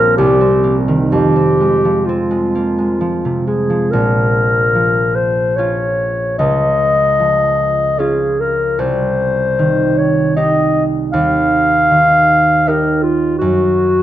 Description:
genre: classical, impressionist duo for clarinet and harp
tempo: 62-82 BPM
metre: 3/4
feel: rubato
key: F minor, Bb dorian from 3.9 s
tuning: A4 = 437 Hz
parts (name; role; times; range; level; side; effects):
- dark clarinet; melody; 0.0-14.0 s; F4 to F5; -14 LUFS; left 1 dB; none
- concert harp; accompaniment; 0.0-14.0 s; Bb1 to G4; -16 LUFS; right 2 dB; none
room: moderate recital hall reverb, RT60 1.2 s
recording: close, detailed microphones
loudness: -12 LUFS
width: side -12 dB against mid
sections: 0.0-3.9 A section; 3.9-14.0 B section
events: none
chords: 0.2 Cm7; 1.1 Fm; 3.9 Bbm7; 6.4 Dbadd9; 8.8 Cm; 11.1 Ebadd9; 13.4 N.C.

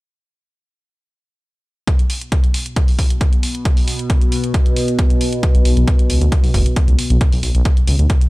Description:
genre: driving peak-time techno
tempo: 135 BPM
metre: 4/4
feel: straight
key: unclear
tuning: A4 = 439 Hz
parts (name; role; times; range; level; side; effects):
- analog drone; drone; 2.6-8.3 s; B2; -23 LUFS; equal; chorus, sidechain pumping
- electronic hi-hat; drums; 1.9-8.3 s; none; -26 LUFS; right 1 dB; sidechain pumping on hats, studio reverb
- electronic kick drum; drums; 1.9-8.2 s; none; -15 LUFS; equal; studio reverb
- detuned saw bass; bass; 5.5-8.1 s; F#1 to D2; -14 LUFS; equal; tube saturation, sidechain pumping
room: digital ambience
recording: dry, gritty hardware recording, transformer saturation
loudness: -13 LUFS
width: side -21 dB against mid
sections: 1.9-8.3 A section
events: none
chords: none

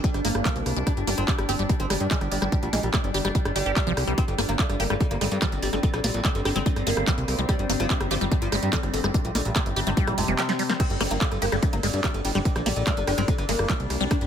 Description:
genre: psychedelic trance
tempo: 145 BPM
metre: 4/4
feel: straight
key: G phrygian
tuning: A4 = 435 Hz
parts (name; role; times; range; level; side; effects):
- oud; melody; 0.0-14.3 s; G2 to D4; -30 LUFS; equal; phaser, sidechain pumping, ping-pong delay
- overtone-sweeping drone; sustained chords; 0.0-14.3 s; G3 to D4; -32 LUFS; left 1 dB; chorus, built-in reverb, phaser, sidechain pumping
- liquid acid bass; riff; 0.0-14.1 s; F3 to G4; -30 LUFS; moving between left 5 dB and right 3 dB; phaser, auto-pan, sidechain pumping, ping-pong delay
- electronic kick drum; drums; 0.0-14.2 s; none; -25 LUFS; equal; none
- techno drum kit; drums; 0.0-14.3 s; crash cymbal, handclaps, hi-hat, ride cymbal, rim click, snare drum; -30 LUFS; right 1 dB; none
- plucky analog bass; bass; 0.1-14.3 s; F1 to G2; -28 LUFS; equal; tube saturation
- resonant blip pluck; second line; 12.3-13.2 s; G3 to C4; -40 LUFS; right 4 dB; none
room: little or no reverb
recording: none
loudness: -22 LUFS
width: side -9 dB against mid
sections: 0.0-14.3 A section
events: kick drops out 10.4-10.8; drum fill 10.4-10.8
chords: 0.0 G5

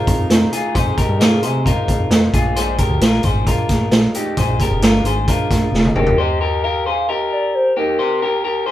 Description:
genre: jangly indie pop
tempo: 133 BPM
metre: 4/4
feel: straight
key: Eb major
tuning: A4 = 439 Hz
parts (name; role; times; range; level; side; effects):
- fingerpicked twelve-string acoustic guitar; accompaniment; 0.0-6.2 s; F2 to Eb4; -26 LUFS; right 2 dB; none
- electric guitar through a small old amp; arpeggios; 0.0-8.7 s; Eb4 to C5; -20 LUFS; left 2 dB; none
- fat analog bass; bass; 0.1-6.1 s; F1 to C3; -21 LUFS; equal; none
- raw garage drum kit; drums; 0.1-6.2 s; hi-hat, kick drum, snare drum, toms; -16 LUFS; right 1 dB; none
- hollow clarinet-like synth lead; melody; 6.0-8.7 s; Bb4 to F5; -19 LUFS; left 1 dB; chorus
room: moderate studio ambience, RT60 0.5 s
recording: band playing live in one room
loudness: -14 LUFS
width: side -13 dB against mid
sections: 0.0-6.2 A section; 6.2-8.7 B section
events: drum fill 5.7-6.2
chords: 0.0 Fm7; 2.3 Bb7; 6.2 Eb; 8.0 Gm

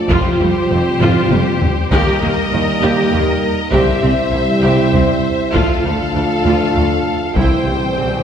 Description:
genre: cinematic, epic orchestral film score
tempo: 66 BPM (dotted quarters)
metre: 6/8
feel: straight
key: F major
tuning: A4 = 440 Hz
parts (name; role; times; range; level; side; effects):
- clear symphonic violin section; melody; 0.0-8.2 s; C5 to G5; -22 LUFS; left 3 dB; none
- clear symphonic violin section; second line; 0.0-8.2 s; G4 to C5; -22 LUFS; left 1 dB; none
- dark French horn section; sustained chords; 0.0-8.2 s; Bb3 to G4+21c; -21 LUFS; equal; none
- warm trombone section; sustained chords; 0.0-8.2 s; E3 to A3; -22 LUFS; right 1 dB; none
- rich symphonic viola section; accompaniment; 0.1-8.1 s; G3 to G4; -20 LUFS; equal; none
- rich symphonic cello section; bass; 0.1-8.1 s; C2 to F2; -21 LUFS; right 2 dB; none
- rich symphonic double bass section; bass; 0.1-8.1 s; F1 to Eb2; -22 LUFS; right 1 dB; none
- taiko ensemble; drums; 0.1-7.9 s; none; -20 LUFS; left 1 dB; none
- timpani; percussion; 7.4-8.2 s; C3; -26 LUFS; equal; none
room: wet scoring stage reverb, RT60 1.5 s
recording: heard from further back in the room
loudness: -12 LUFS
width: side -8 dB against mid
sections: 0.0-8.2 A section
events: drum fill 1.0-1.9; timpani fill 7.4-8.2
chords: 0.1 Fsus2; 1.9 Eb; 3.7 C; 5.5 Dm; 7.4 C

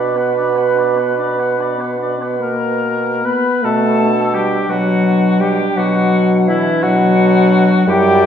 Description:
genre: classical, slow romantic movement for wind quintet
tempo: 48-58 BPM (dotted quarters)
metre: 12/8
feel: rubato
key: B minor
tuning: A4 = 441 Hz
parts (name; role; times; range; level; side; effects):
- hollow concert flute; melody; 0.0-8.3 s; E5 to B5; -24 LUFS; left 5 dB; none
- warm oboe; second line; 0.0-8.3 s; E4 to D5; -21 LUFS; left 2 dB; none
- mellow French horn; accompaniment; 0.0-8.3 s; E3 to D4; -16 LUFS; left 1 dB; none
- mellow clarinet; accompaniment; 0.0-8.3 s; D4 to B4; -21 LUFS; right 8 dB; none
- warm bassoon; bass; 0.0-8.3 s; F#2 to B2; -19 LUFS; right 1 dB; none
room: wet recital hall reverb, RT60 1.3 s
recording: heard from further back in the room, nothing above 7.8 kHz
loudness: -12 LUFS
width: side -8 dB against mid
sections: 0.0-3.6 A section; 3.6-8.3 A section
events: none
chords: 0.0 Bm

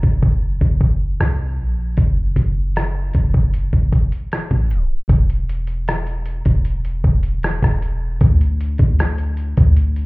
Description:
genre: contemporary R&B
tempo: 77 BPM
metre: 4/4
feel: straight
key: unclear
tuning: A4 = 440 Hz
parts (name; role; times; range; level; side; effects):
- warm 808-style bass; bass; 0.0-10.1 s; E1 to D2; -18 LUFS; equal; none
- dusty soul sampler-style drum kit; drums; 0.0-10.1 s; hi-hat, kick drum, rim click; -16 LUFS; equal; none
room: digital ambience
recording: heard muffled through a wall, club reverb, EQ, tape stop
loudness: -15 LUFS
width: side -24 dB against mid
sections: 0.0-5.1 A section; 5.1-10.1 B section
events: tape stop 4.7-5.1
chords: none

